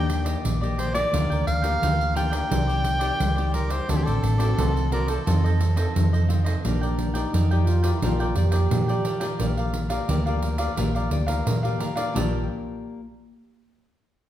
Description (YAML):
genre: samba and choro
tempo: 87 BPM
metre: 4/4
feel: straight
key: Bb major from 6.6 s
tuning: A4 = 440 Hz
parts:
  - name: clear soprano saxophone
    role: melody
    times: 0.0-6.3 s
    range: G4 to G5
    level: -28 LUFS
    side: right 1 dB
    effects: none
  - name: cavaquinho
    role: accompaniment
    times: 0.0-12.4 s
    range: D4 to G5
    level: -32 LUFS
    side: equal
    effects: none
  - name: nylon-string guitar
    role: accompaniment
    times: 0.0-13.0 s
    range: Bb2 to D5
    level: -31 LUFS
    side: left 3 dB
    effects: none
  - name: hollow-body short-scale fingered electric bass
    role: bass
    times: 0.0-12.5 s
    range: A1 to Bb2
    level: -23 LUFS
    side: equal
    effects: none
  - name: pandeiro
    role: percussion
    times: 0.1-12.3 s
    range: none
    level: -29 LUFS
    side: right 2 dB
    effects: none
  - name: breathy trombone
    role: second line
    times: 6.6-12.5 s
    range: D4 to G4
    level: -30 LUFS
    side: right 2 dB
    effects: none
room: wet recital hall reverb, RT60 1.3 s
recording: recorded in a church or concert hall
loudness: -21 LUFS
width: side -12 dB against mid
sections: 0.0-6.6 A section; 6.6-12.2 B section; 12.2-14.3 C section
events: none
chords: 0.0 Ebmaj7; 1.1 Gm7/D; 2.5 Cmadd9; 3.9 D7; 5.3 F7; 6.6 Bb6